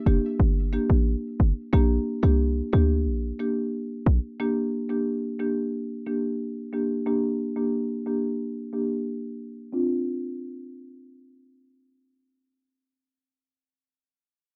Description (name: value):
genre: dancehall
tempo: 90 BPM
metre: 4/4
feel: straight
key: D minor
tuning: A4 = 441 Hz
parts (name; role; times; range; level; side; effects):
- marimba with soft mallets; accompaniment; 0.1-13.5 s; Bb3 to G4; -29 LUFS; equal; low-pass filter
- short 808-style bass; bass; 0.1-4.2 s; F1 to D2; -23 LUFS; equal; none
room: little or no reverb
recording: none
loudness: -26 LUFS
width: mono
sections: 0.0-9.7 A section; 9.7-12.4 B section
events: filter sweep on marimba 0.0-9.7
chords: 0.0 Gm; 1.7 Bb6; 9.7 Dm7